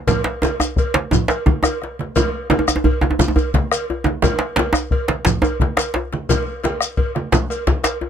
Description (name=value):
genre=west african traditional, West African drum ensemble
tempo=116 BPM (dotted quarters)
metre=12/8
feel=straight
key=none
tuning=none
part: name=bombo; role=percussion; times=0.1-8.0 s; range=none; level=-19 LUFS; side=left 2 dB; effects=none
part: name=congas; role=percussion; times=0.1-7.8 s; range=none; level=-23 LUFS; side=right 5 dB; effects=none
part: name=cowbell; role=percussion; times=0.1-8.0 s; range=none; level=-25 LUFS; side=equal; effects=none
part: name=djembe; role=percussion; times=0.1-8.1 s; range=none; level=-25 LUFS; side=left 4 dB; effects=none
part: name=djembe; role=percussion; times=0.1-8.0 s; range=none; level=-19 LUFS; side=right 2 dB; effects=none
part: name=shekere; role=percussion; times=0.1-8.0 s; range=none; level=-24 LUFS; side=left 4 dB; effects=none
room=light reverb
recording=none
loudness=-16 LUFS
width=side -8 dB against mid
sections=0.0-8.1 A section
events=drum fill 1.5-2.2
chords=none